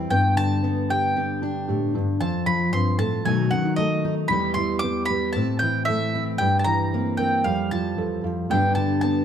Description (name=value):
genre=acoustic folk duo or small band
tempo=114 BPM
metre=4/4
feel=straight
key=unclear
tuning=A4 = 440 Hz
part: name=fingerpicked steel-string acoustic guitar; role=accompaniment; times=0.0-9.2 s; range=E2 to G4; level=-24 LUFS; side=left 2 dB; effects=none
part: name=felt-muted upright piano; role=arpeggios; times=0.0-9.2 s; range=E3 to Bb4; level=-27 LUFS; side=right 4 dB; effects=none
part: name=mandolin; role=melody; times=0.1-9.2 s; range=D#5 to D6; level=-25 LUFS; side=equal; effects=none
room=moderate large studio reverb, RT60 1.4 s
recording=none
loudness=-20 LUFS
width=side -8 dB against mid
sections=0.0-9.2 A section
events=none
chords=0.1 G; 2.2 F; 3.3 B7; 4.3 Em; 5.4 Am; 6.4 C7/G; 7.5 Fadd9; 8.5 Gadd9